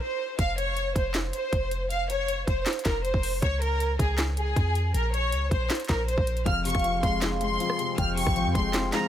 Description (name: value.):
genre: hip hop, trap.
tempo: 158 BPM.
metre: 4/4.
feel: half-time.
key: F minor.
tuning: A4 = 441 Hz.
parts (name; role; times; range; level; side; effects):
rich symphonic violin section; melody; 0.0-9.1 s; Ab4 to F6; -29 LUFS; equal; none.
clean 808-style bass; bass; 0.4-8.9 s; F1 to F2; -29 LUFS; equal; none.
trap drum kit; drums; 0.4-9.0 s; handclaps, hi-hat, kick drum, rim click, snare drum; -28 LUFS; equal; none.
warm velvety synth lead; second line; 6.5-9.1 s; F5 to G5; -32 LUFS; right 1 dB; chorus, digital delay.
felt-muted upright piano; accompaniment; 6.5-9.1 s; F2 to C4; -30 LUFS; left 6 dB; none.
warm analog pad; sustained chords; 6.6-9.1 s; F3 to F5; -35 LUFS; right 1 dB; chorus.
room: little or no reverb.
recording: none.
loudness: -24 LUFS.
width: side -11 dB against mid.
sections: 0.0-6.5 A section; 6.5-9.1 B section.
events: break 0.0-0.4.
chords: 0.4 F5; 3.4 Db; 4.9 Bbm; 6.5 Fm.